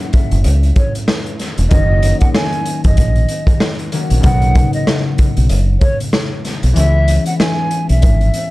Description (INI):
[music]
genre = hip hop, boom-bap hip-hop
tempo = 95 BPM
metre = 4/4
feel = swing 58% on 16ths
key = unclear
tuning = A4 = 442 Hz
[part]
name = concert harp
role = accompaniment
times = 0.0-8.5 s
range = C#3 to F#4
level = -21 LUFS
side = left 3 dB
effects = cassette tape, high-pass filter, low-pass filter
[part]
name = raw garage drum kit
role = drums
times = 0.0-8.5 s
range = hi-hat, kick drum, rim click, snare drum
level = -15 LUFS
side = equal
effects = none
[part]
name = deep dub fingered electric bass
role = bass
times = 0.3-8.3 s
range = E1 to C#2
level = -12 LUFS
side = equal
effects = none
[part]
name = breathy hollow jazz flute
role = melody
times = 0.8-8.5 s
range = C#5 to G#5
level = -22 LUFS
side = right 1 dB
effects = high-pass filter, low-pass filter, ping-pong delay
[sound]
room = little or no reverb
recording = dark, warm production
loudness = -12 LUFS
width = side -19 dB against mid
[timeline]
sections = 0.0-8.5 A section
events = kick muted 6.8-8.0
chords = 0.0 F#7; 1.7 D#m7/F#; 4.2 Bmaj7; 6.8 C#m7